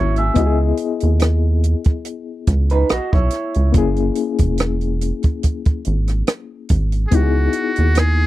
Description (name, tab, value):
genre	R&B, neo-soul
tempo	71 BPM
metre	4/4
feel	swing 54% on 16ths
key	C# dorian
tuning	A4 = 443 Hz
part	electric guitar through a small old amp	second line	0.0-3.7 s	D#4 to E5	-21 LUFS	right 4 dB	none
part	overdriven reed electric piano	accompaniment	0.0-8.3 s	A#3 to D#5	-23 LUFS	left 8 dB	fast tremolo
part	rubbery square bass	bass	0.0-8.3 s	E1 to D#2	-17 LUFS	right 1 dB	none
part	compact cocktail drum kit	drums	0.2-8.2 s	hi-hat, kick drum, rim click	-17 LUFS	right 1 dB	none
part	trumpet with metal mute	melody	7.1-8.3 s	F#4 to G#4	-22 LUFS	right 1 dB	slapback echo
room	little or no reverb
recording	dry, close 1970s-style studio recording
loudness	-15 LUFS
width	side -15 dB against mid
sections	0.0-8.3 A section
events	none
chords	0.4 C#m9; 3.7 F#9 (rootless); 7.1 C#m9